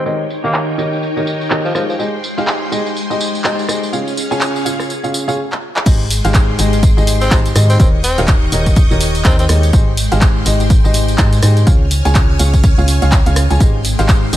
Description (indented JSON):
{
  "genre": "piano house",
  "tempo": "124 BPM",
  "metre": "4/4",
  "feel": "swing 59% on 16ths",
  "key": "Ab major",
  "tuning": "A4 = 440 Hz",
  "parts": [
    { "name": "string machine, violins", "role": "sustained chords", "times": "0.0-14.4 s", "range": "Ab3 to G6", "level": "-24 LUFS", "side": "left 1 dB", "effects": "ensemble chorus, sidechain pumping" },
    { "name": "clear upright piano", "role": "riff", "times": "0.0-14.4 s", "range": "Db3 to Ab5", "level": "-19 LUFS", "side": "equal", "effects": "sidechain pumping, tape echo" },
    { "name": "raspy tenor saxophone", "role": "melody", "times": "0.1-2.0, 7.2-9.5 s", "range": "F3 to C4", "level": "-22 LUFS", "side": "left 1 dB", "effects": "tape echo" },
    { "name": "punchy analog drum machine", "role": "drums", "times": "0.1-14.4 s", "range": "crash cymbal, handclaps, hi-hat, rim click, tambourine", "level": "-20 LUFS", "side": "equal", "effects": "none" },
    { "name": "organ-like FM bass", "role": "bass", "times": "5.9-14.4 s", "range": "Eb1 to Ab2", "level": "-14 LUFS", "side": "equal", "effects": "sidechain pumping" },
    { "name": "electronic kick drum", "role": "drums", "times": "5.9-14.2 s", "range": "none", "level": "-12 LUFS", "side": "equal", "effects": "none" }
  ],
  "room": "little or no reverb",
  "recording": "low-pass filter",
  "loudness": "-11 LUFS",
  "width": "side -13 dB against mid",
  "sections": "0.0-5.9 A section; 5.9-14.4 B section",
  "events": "filter sweep 0.0-5.9; drum fill 5.5-5.9; drop 5.9-14.4",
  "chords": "0.1 Eb7; 2.0 Abmaj7; 3.9 Db; 5.9 Abmaj7; 7.8 Eb7; 9.7 Abmaj7; 11.7 Db; 13.6 Abmaj7"
}